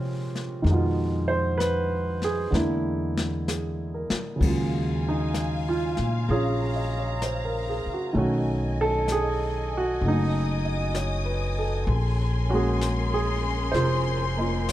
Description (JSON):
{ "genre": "jazz ballad", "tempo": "64 BPM", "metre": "4/4", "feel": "swing 68% on 8ths", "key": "Bb minor", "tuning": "A4 = 438 Hz", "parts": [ { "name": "warm upright piano", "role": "accompaniment", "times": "0.0-14.7 s", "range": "Bb2 to Eb5", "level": "-26 LUFS", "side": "right 2 dB", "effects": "none" }, { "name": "upright bass", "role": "bass", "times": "0.0-14.7 s", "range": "F1 to C3", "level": "-27 LUFS", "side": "left 1 dB", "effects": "none" }, { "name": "jazz brush drum kit", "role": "drums", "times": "0.4-14.7 s", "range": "brushed snare drum, crash cymbal, hi-hat, kick drum, snare drum", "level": "-32 LUFS", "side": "left 3 dB", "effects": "none" }, { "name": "warm symphonic string section", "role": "sustained chords", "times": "4.4-14.7 s", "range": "Db4 to D#6", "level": "-33 LUFS", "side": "left 3 dB", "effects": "none" } ], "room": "little or no reverb", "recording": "none", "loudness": "-23 LUFS", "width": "side -13 dB against mid", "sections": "0.0-14.7 A section", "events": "drum fill 2.5-4.4", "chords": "0.0 Gbmaj9#11 (rootless); 0.7 Fm7b5; 2.5 E7#11; 4.4 Ebm11; 8.1 B13; 11.9 Bbm9" }